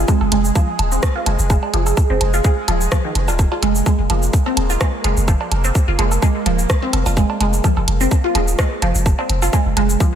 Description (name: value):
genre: minimal techno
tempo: 127 BPM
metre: 4/4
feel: swing 54% on 16ths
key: F minor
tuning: A4 = 440 Hz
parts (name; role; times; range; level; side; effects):
- punchy sub bass; bass; 0.0-10.0 s; Eb1 to F1; -18 LUFS; equal; sidechain pumping
- bubbling stepped-filter texture; texture; 0.0-10.2 s; Ab3 to Ab4; -27 LUFS; right 2 dB; chorus, built-in reverb, sidechain pumping
- resonant blip pluck; riff; 0.1-10.0 s; Eb3 to F4; -21 LUFS; right 2 dB; phaser, lush chorus, sidechain pumping, ping-pong delay
- electronic kick drum; drums; 0.1-10.1 s; none; -16 LUFS; equal; overdrive
- garage drum kit; drums; 0.1-10.1 s; cabasa, hi-hat, rim click; -25 LUFS; equal; overdrive
- woodblock and cowbell; percussion; 0.1-10.1 s; none; -28 LUFS; right 6 dB; analog delay
room: light reverb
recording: none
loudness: -15 LUFS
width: side -9 dB against mid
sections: 0.0-10.2 A section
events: none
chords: 0.0 Fm7